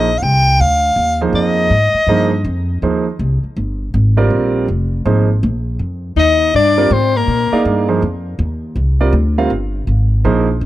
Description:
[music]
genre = modal jazz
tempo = 162 BPM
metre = 4/4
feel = swing 64% on 8ths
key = unclear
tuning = A4 = 445 Hz
[part]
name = clear soprano saxophone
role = melody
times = 0.0-2.7, 6.2-7.7 s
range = Bb4 to G5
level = -14 LUFS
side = left 1 dB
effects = none
[part]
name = clear concert grand piano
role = accompaniment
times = 0.0-10.5 s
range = F3 to F5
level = -17 LUFS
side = right 4 dB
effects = none
[part]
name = upright bass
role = bass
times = 0.0-10.7 s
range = F1 to Bb2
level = -16 LUFS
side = equal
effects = none
[part]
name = mellow alto saxophone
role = second line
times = 6.2-7.7 s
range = Bb3 to Eb4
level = -18 LUFS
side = left 12 dB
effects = none
[sound]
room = little or no reverb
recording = dry, close 1970s-style studio recording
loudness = -12 LUFS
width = side -14 dB against mid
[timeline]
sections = 0.0-10.7 A section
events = none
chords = 0.0 Bb9sus4; 5.8 F9sus4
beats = 0.22 0.59 0.97 | 1.34 1.71 2.08 2.45 | 2.82 3.19 3.56 3.94 | 4.31 4.68 5.05 5.42 | 5.79 6.16 6.54 6.91 | 7.28 7.65 8.02 8.39 | 8.76 9.13 9.51 9.88 | 10.25 10.62

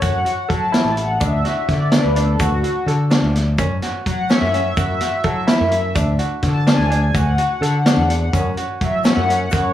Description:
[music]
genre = progressive instrumental, band music in an uneven meter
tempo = 253 BPM (eighths)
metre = 5/8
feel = straight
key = F# minor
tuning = A4 = 438 Hz
[part]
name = chorused pulse-width pad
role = accompaniment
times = 0.0-9.7 s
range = F#4 to A5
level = -22 LUFS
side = left 2 dB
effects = none
[part]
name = clear grand piano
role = arpeggios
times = 0.0-9.7 s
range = C#4 to A4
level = -24 LUFS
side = right 2 dB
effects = tape echo
[part]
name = fretless electric bass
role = bass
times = 0.0-9.7 s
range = A1 to F#3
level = -20 LUFS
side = left 1 dB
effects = none
[part]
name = vintage drum kit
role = drums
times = 0.0-9.6 s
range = hi-hat, kick drum, snare drum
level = -20 LUFS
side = equal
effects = none
[part]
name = tube shaker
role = percussion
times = 0.0-9.7 s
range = none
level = -39 LUFS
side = left 6 dB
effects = none
[sound]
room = moderate small room reverb, RT60 0.5 s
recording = small room ambience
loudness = -15 LUFS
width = side -12 dB against mid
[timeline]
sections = 0.0-9.7 A section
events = analog synth pad solo 0.0-9.7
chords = 0.0 F#m; 1.2 D; 3.6 F#5; 6.0 D; 8.3 F#5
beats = | 0.01 0.25 0.49 0.73 0.96 | 1.20 1.44 1.68 1.91 2.15 | 2.39 2.63 2.87 3.10 3.34 | 3.58 3.81 4.05 4.29 4.53 | 4.76 5.00 5.24 5.48 5.71 | 5.95 6.19 6.43 6.67 6.90 | 7.14 7.38 7.62 7.85 8.09 | 8.33 8.56 8.80 9.04 9.28 | 9.51

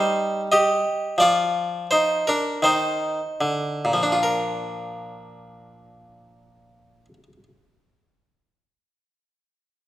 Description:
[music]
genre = classical, baroque-style suite movement for harpsichord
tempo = 37-46 BPM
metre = 4/4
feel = rubato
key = Bb major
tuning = A4 = 440 Hz
[part]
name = harpsichord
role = solo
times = 0.0-7.4 s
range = Bb2 to Eb5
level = -20 LUFS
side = equal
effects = none
[sound]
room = moderate recital hall reverb, RT60 1.3 s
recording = none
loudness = -20 LUFS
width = side -14 dB against mid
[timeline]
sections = 0.0-4.2 A section; 4.2-9.9 B section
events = slowing down 0.0-4.2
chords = 0.0 F7(no3); 4.2 Bb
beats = 1.18 2.62 | 4.20 5.77 7.33

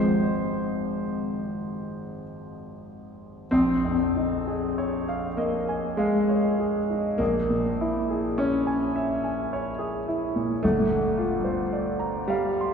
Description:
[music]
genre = classical, impressionist solo piano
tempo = 45-55 BPM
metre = 3/4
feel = rubato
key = unclear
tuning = A4 = 439 Hz
[part]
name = clear concert grand piano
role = solo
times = 0.0-12.7 s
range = G1 to C6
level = -24 LUFS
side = equal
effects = none
[sound]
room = wet church reverb, RT60 2.7 s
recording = recorded in a church or concert hall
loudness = -23 LUFS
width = side -6 dB against mid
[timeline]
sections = 0.0-3.5 A section; 3.5-12.7 B section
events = none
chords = 0.0 Ab6; 3.5 Bbm11; 7.2 Dbm6/Bb; 10.6 Gm11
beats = 0.99 2.22 | 3.52 4.77 5.99 | 7.20 8.38 9.51 | 10.63 11.73

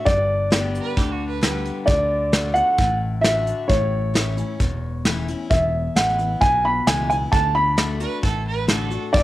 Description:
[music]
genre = honky-tonk and classic country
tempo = 132 BPM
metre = 4/4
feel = straight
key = D major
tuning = A4 = 436 Hz
[part]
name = dark upright piano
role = melody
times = 0.0-9.2 s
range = C#5 to B5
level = -20 LUFS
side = right 1 dB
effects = cassette tape
[part]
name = picked steel-string acoustic guitar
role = accompaniment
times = 0.0-9.2 s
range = E2 to G4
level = -28 LUFS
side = left 5 dB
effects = cassette tape
[part]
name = fingered electric bass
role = bass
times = 0.1-9.2 s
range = E1 to D2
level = -26 LUFS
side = equal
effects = none
[part]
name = soft brush drum kit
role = drums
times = 0.1-9.2 s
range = hi-hat, kick drum, snare drum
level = -21 LUFS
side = equal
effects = cassette tape
[part]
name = clear fiddle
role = second line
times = 0.8-1.8, 8.0-9.0 s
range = F#4 to B4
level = -29 LUFS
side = right 6 dB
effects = cassette tape
[sound]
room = moderate spring reverb, RT60 1.3 s, studio reverb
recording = home recording on cassette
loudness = -18 LUFS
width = side -15 dB against mid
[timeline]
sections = 0.0-9.2 A section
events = none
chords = 0.1 G; 1.9 D; 3.7 A; 5.5 E; 7.3 D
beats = | 0.06 0.52 0.97 1.42 | 1.88 2.33 2.79 3.24 | 3.69 4.15 4.60 5.05 | 5.51 5.96 6.42 6.87 | 7.32 7.78 8.23 8.69 | 9.14

